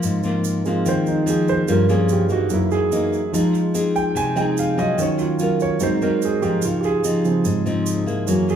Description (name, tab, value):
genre	bossa nova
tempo	146 BPM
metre	4/4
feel	straight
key	Ab major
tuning	A4 = 440 Hz
part	nylon-string guitar	accompaniment	0.0-8.6 s	Gb2 to Ab4	-20 LUFS	left 2 dB	none
part	tube shaker	percussion	0.0-8.6 s	none	-34 LUFS	right 7 dB	none
part	warm concert grand piano	accompaniment	0.7-8.6 s	Gb2 to Ab5	-21 LUFS	right 5 dB	none
room	wet large studio reverb, RT60 0.8 s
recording	band playing live in one room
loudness	-17 LUFS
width	side -8 dB against mid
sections	0.0-8.6 A section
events	grand piano solo 0.0-8.6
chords	0.0 Ab69; 1.7 Gm7b5; 2.5 Gb6; 3.3 Fm7; 5.0 Ebm9; 5.8 Ab7; 6.6 Dbmaj9